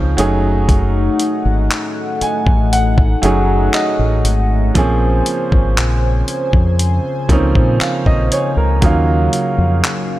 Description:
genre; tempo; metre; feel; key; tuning
contemporary R&B; 59 BPM; 4/4; straight; unclear; A4 = 440 Hz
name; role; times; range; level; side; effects
warm baby grand piano; accompaniment; 0.0-10.2 s; F3 to Ab5; -18 LUFS; right 3 dB; none
chorused pulse-width pad; sustained chords; 0.0-10.2 s; Db3 to Ab5; -21 LUFS; left 2 dB; sidechain pumping
deep dub fingered electric bass; bass; 0.0-9.8 s; Gb1 to Bb2; -15 LUFS; equal; none
dusty soul sampler-style drum kit; drums; 0.2-10.1 s; handclaps, hi-hat, kick drum; -16 LUFS; equal; none
room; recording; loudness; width
little or no reverb; none; -12 LUFS; side -15 dB against mid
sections
0.0-10.2 A section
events
grand piano fill 1.7-4.8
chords
0.2 Gbm6; 4.8 Bbm9; 8.8 Ebm9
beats
| 0.69 1.70 2.72 3.74 | 4.75 5.77 6.79 7.80 | 8.82 9.84

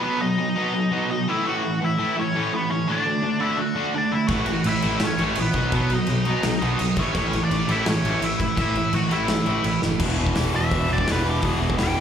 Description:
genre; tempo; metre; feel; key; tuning
punk rock; 168 BPM; 4/4; straight; unclear; A4 = 439 Hz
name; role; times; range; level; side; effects
nasal lead guitar with a parked wah; melody; 0.0-12.0 s; B3 to G5; -26 LUFS; left 2 dB; overdrive, slapback echo, ping-pong delay
distorted electric guitar; riff; 0.0-12.0 s; E2 to D4; -26 LUFS; right 8 dB; distortion, slapback echo
tight distorted guitar; riff; 0.0-12.0 s; E2 to D4; -27 LUFS; left 9 dB; distortion, slapback echo
fuzz picked electric bass; bass; 4.3-12.0 s; E1 to B2; -26 LUFS; equal; overdrive
big rock drum kit; drums; 4.3-11.9 s; crash cymbal, hi-hat, kick drum, snare drum; -26 LUFS; equal; none
room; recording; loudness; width
studio ambience; live gig heard through the venue's PA, club reverb; -20 LUFS; side -8 dB against mid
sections
0.0-10.0 A section; 10.0-12.0 B section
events
half time 0.0-10.0; drum fill 9.8; lead electric guitar solo 10.0-12.0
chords
0.0 B; 1.3 A; 2.9 D; 4.3 A; 5.6 B; 7.0 A; 10.0 E5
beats
| 0.02 0.38 0.73 1.09 | 1.45 1.80 2.16 2.52 | 2.88 3.23 3.59 3.95 | 4.31 4.66 5.02 5.38 | 5.73 6.09 6.45 6.80 | 7.16 7.52 7.87 8.23 | 8.59 8.94 9.30 9.65 | 10.01 10.37 10.72 11.08 | 11.44 11.80

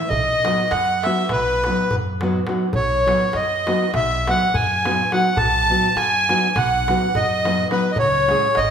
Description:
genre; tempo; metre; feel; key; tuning
balkan folk, Balkan wedding band; 206 BPM (eighths); 9/8; straight; B mixolydian; A4 = 440 Hz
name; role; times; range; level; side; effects
accordion; melody; 0.0-8.7 s; B4 to A5; -19 LUFS; right 1 dB; none
rich violin; second line; 0.0-8.7 s; B4 to A5; -27 LUFS; left 6 dB; none
nylon-string guitar; accompaniment; 0.0-8.5 s; F#3 to G#4; -24 LUFS; left 1 dB; none
upright bass; bass; 0.1-8.7 s; G#1 to F#2; -27 LUFS; equal; none
darbuka; percussion; 0.1-8.7 s; none; -28 LUFS; equal; none
room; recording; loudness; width
wet recital hall reverb, RT60 1.4 s; none; -16 LUFS; side -8 dB against mid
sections
0.0-2.7 A section; 2.7-8.7 B section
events
none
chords
0.1 B; 8.0 C#m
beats
| 0.11 0.41 0.70 0.99 1.28 1.58 1.87 2.16 2.46 | 2.75 3.04 3.33 3.62 3.91 4.20 4.50 4.79 5.08 | 5.37 5.66 5.95 6.24 6.53 6.82 7.11 7.39 7.68 | 7.97 8.26 8.55

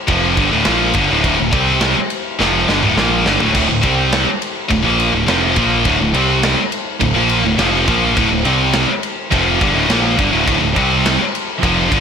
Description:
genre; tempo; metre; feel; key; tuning
heavy metal; 104 BPM; 4/4; straight; D minor; A4 = 438 Hz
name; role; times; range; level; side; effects
heavy high-gain guitar; riff; 0.1-12.0 s; D2 to C4; -16 LUFS; left 7 dB; distortion
overdriven electric guitar; riff; 0.1-12.0 s; D2 to C4; -23 LUFS; right 3 dB; none
scooped high-gain guitar; riff; 0.1-12.0 s; D2 to C4; -20 LUFS; right 16 dB; distortion
growling picked electric bass; bass; 0.1-12.0 s; D1 to C2; -20 LUFS; right 1 dB; overdrive
tight metal drum kit; drums; 0.1-12.0 s; crash cymbal, kick drum, ride cymbal, snare drum, splash cymbal, toms; -19 LUFS; equal; soft clipping on kick
room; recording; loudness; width
studio reverb; blown-out, overdriven recording, overdrive; -12 LUFS; side -7 dB against mid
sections
0.0-12.0 A section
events
drum fill 2.4-3.6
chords
0.0 Dm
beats
0.09 0.66 | 1.24 1.82 2.40 2.97 | 3.55 4.13 4.71 5.28 | 5.86 6.43 7.01 7.59 | 8.16 8.74 9.31 9.89 | 10.47 11.04 11.62

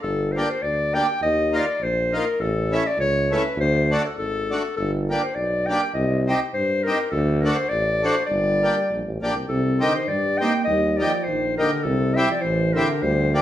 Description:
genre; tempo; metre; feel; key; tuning
alpine folk, alpine dance band; 102 BPM; 2/4; swing 55% on 8ths; G minor; A4 = 440 Hz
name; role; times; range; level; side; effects
warm clarinet; melody; 0.0-13.4 s; A4 to G5; -23 LUFS; left 2 dB; none
warm tuba; bass; 0.0-13.4 s; G1 to G2; -25 LUFS; equal; none
accordion; accompaniment; 0.4-13.4 s; A3 to G4; -24 LUFS; equal; none
mellow euphonium; second line; 8.3-13.4 s; C3 to Bb3; -26 LUFS; right 2 dB; none
room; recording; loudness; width
moderate large studio reverb, RT60 0.8 s; band playing live in one room; -19 LUFS; side -12 dB against mid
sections
0.0-13.4 A section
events
none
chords
0.0 Gm; 1.2 Ebsus2; 2.4 A; 3.6 D; 4.8 Gm; 6.0 Cm; 7.1 D; 8.3 Gm; 9.5 Cm; 10.7 Eb; 11.9 C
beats
| 0.04 0.63 | 1.22 1.80 | 2.39 2.98 | 3.57 4.17 | 4.77 5.36 | 5.95 6.54 | 7.12 7.71 | 8.29 8.89 | 9.49 10.09 | 10.68 11.27 | 11.85 12.44 | 13.03

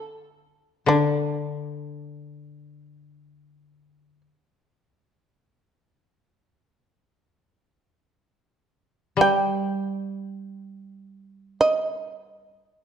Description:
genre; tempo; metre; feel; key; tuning
japanese traditional, Japanese chamber music; free time; none; none; unclear; A4 = 441 Hz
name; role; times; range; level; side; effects
shamisen; melody; 0.0-12.8 s; D4 to G5; -22 LUFS; right 4 dB; none
koto; accompaniment; 0.0-12.5 s; D3 to G3; -25 LUFS; left 4 dB; none
room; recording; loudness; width
wet recital hall reverb, RT60 1.5 s; dark, warm production; -22 LUFS; side -8 dB against mid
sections
0.0-8.0 A section; 8.0-12.8 A section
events
none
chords
none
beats
free time

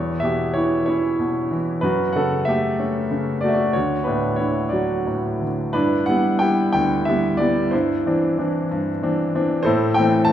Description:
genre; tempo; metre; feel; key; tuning
classical, lyrical solo piano; 62 BPM (dotted quarters); 6/8; rubato; G major from 5.7 s; A4 = 441 Hz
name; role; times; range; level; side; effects
clear grand piano; solo; 0.0-10.3 s; D2 to A5; -18 LUFS; equal; none
room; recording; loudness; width
wet concert hall reverb, RT60 2.2 s; recorded in a church or concert hall; -18 LUFS; side -10 dB against mid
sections
0.0-5.7 A section; 5.7-10.3 B section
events
none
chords
0.0 Em6; 1.8 F#m; 3.7 D; 5.7 G6; 7.7 Cadd9/G; 9.7 Am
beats
0.87 | 1.83 2.79 | 3.75 4.72 | 5.74 6.75 | 7.73 8.70 | 9.65

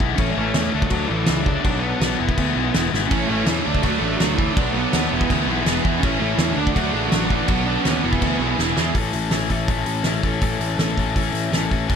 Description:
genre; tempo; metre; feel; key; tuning
punk rock; 164 BPM; 4/4; straight; A major; A4 = 440 Hz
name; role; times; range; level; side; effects
tight distorted guitar; riff; 0.0-12.0 s; A2 to A4; -24 LUFS; left 8 dB; distortion
fuzz picked electric bass; bass; 0.0-12.0 s; E1 to E2; -25 LUFS; equal; overdrive
loose indie drum kit; drums; 0.0-12.0 s; crash cymbal, hi-hat, kick drum, snare drum; -23 LUFS; equal; none
dark smooth lead guitar; melody; 0.1-8.6 s; E3 to D5; -26 LUFS; right 5 dB; overdrive
biting overdriven guitar; riff; 3.1-8.9 s; E2 to D4; -25 LUFS; right 17 dB; none
room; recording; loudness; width
little or no reverb; none; -18 LUFS; side -7 dB against mid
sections
0.0-9.0 A section; 9.0-12.0 B section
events
drum fill 2.9, 8.6-9.0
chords
0.2 A; 0.7 D; 1.6 Bm; 2.2 E; 3.1 A; 3.6 D; 4.6 Bm; 5.1 E; 6.0 A; 6.6 D; 7.5 Bm; 8.0 E; 9.0 A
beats
| 0.18 0.54 0.91 1.27 | 1.64 2.00 2.37 2.73 | 3.10 3.46 3.83 4.19 | 4.56 4.92 5.29 5.66 | 6.02 6.39 6.75 7.12 | 7.48 7.85 8.22 8.58 | 8.95 9.32 9.69 10.05 | 10.42 10.79 11.16 11.53 | 11.90

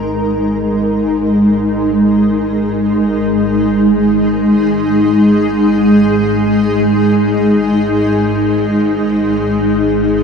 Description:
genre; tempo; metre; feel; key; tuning
dark ambient drone; free time; none; none; unclear; A4 = 440 Hz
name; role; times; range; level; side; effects
granular cloud pad; sustained chords; 0.0-10.2 s; E3 to A#4; -11 LUFS; equal; built-in reverb, analog chorus
bowed-like drone; drone; 0.0-10.2 s; G#1 to G#2; -22 LUFS; equal; built-in reverb
room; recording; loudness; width
wet huge ambient reverb, RT60 8.6 s; dreamy mix soaked in reverb; -11 LUFS; side -6 dB against mid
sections
0.0-10.2 A section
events
fade-in on synth drone 0.0-10.2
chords
0.0 G#5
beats
free time

